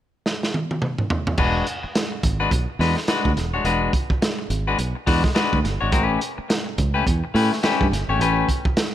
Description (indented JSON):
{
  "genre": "funk",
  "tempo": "106 BPM",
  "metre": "4/4",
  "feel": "swing 60% on 16ths",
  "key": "E mixolydian",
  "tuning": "A4 = 440 Hz",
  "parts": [
    { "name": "crunchy breakbeat drum kit", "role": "drums", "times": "0.3-8.9 s", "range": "crash cymbal, hi-hat, kick drum, snare drum, toms", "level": "-23 LUFS", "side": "right 1 dB", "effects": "none" },
    { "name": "clean electric guitar", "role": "accompaniment", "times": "1.4-8.8 s", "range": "G#3 to C#5", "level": "-23 LUFS", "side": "left 5 dB", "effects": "spring reverb" },
    { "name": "fingered electric bass", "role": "bass", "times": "1.4-8.7 s", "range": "D#1 to A2", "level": "-23 LUFS", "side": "right 2 dB", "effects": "none" }
  ],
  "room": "little or no reverb",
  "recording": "none",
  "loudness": "-19 LUFS",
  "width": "side -12 dB against mid",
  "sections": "0.0-1.4 A section; 1.4-8.9 B section",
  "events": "drum fill 0.2-1.4",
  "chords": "0.0 N.C.; 1.4 E9; 5.9 A9"
}